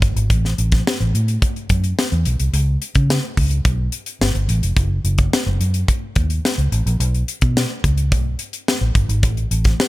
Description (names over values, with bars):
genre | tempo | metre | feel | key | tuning
polished 1980s jazz-funk pop | 108 BPM | 4/4 | straight | unclear | A4 = 440 Hz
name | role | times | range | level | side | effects
vintage muted fingered electric bass | bass | 0.0-9.7 s | F1 to C#3 | -18 LUFS | equal | none
crisp fusion drum kit | drums | 0.0-9.9 s | hi-hat, kick drum, snare drum | -19 LUFS | equal | none
room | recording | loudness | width
little or no reverb | none | -16 LUFS | side -18 dB against mid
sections
0.0-9.9 A section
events
none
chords
none